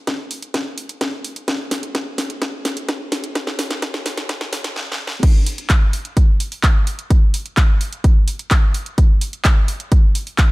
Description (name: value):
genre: EDM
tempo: 128 BPM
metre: 4/4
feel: straight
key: none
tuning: none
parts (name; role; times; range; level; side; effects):
- electronic kick drum; drums; 0.1-10.5 s; none; -14 LUFS; equal; overdrive, high-pass filter on kick, high-pass filter on room
- house drum kit; drums; 0.1-10.5 s; crash cymbal, handclaps, hi-hat, snare drum; -22 LUFS; equal; overdrive
room: light reverb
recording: high-pass filter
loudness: -16 LUFS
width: side -21 dB against mid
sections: 0.0-5.2 A section; 5.2-10.5 B section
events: build-up 0.0-5.2; drum fill 0.0-4.8, 4.8-5.2; drop 5.2-10.5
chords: none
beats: 0.07 0.54 1.01 | 1.48 1.95 2.42 2.89 | 3.35 3.82 4.29 4.76 | 5.23 5.70 6.17 6.64 | 7.11 7.57 8.04 8.51 | 8.98 9.45 9.92 10.39